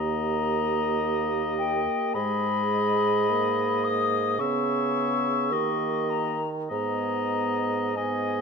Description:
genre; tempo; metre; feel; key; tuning
classical, slow romantic movement for wind quintet; 47-54 BPM; 4/4; rubato; G# minor; A4 = 440 Hz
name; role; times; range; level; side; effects
mellow hollow silver concert flute; melody; 0.0-8.4 s; G5 to D#6; -28 LUFS; left 10 dB; none
warm oboe; second line; 0.0-8.4 s; D#5 to E5; -31 LUFS; left 1 dB; none
warm French horn; accompaniment; 0.0-8.4 s; G#3 to B3; -31 LUFS; right 1 dB; none
warm clarinet; accompaniment; 0.0-8.4 s; G4 to G#4; -32 LUFS; right 12 dB; none
warm bassoon; bass; 0.0-8.4 s; D#2 to D#3; -30 LUFS; right 4 dB; none
room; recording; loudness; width
moderate recital hall reverb, RT60 1.6 s; close, detailed microphones; -23 LUFS; side -5 dB against mid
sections
0.0-8.4 A section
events
none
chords
0.0 D#; 2.2 G#m; 4.4 C#m7; 5.5 D#7; 6.7 G#m

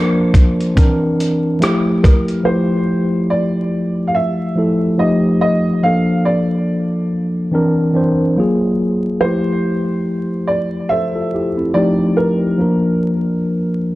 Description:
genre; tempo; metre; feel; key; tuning
lo-fi hip hop; 71 BPM; 4/4; swing 56% on 16ths; F major; A4 = 442 Hz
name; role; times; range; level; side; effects
warm upright piano; melody; 0.0-14.0 s; Bb4 to F5; -20 LUFS; right 1 dB; tape echo
mellow tine electric piano; accompaniment; 0.0-14.0 s; E3 to C5; -15 LUFS; equal; medium stereo tremolo, cassette tape
dusty soul sampler-style drum kit; drums; 0.3-2.4 s; hi-hat, kick drum, rim click; -13 LUFS; equal; none
room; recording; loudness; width
light reverb, digital ambience; vinyl crackle; -14 LUFS; side -18 dB against mid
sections
0.0-2.4 A section; 2.4-14.0 B section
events
none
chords
0.0 Bb; 0.8 C9; 1.6 Fmaj9; 5.0 F9; 5.8 Bbmaj7; 7.5 C9; 8.4 Gbmaj9; 9.2 Fmaj9; 11.7 F9; 12.6 Bb

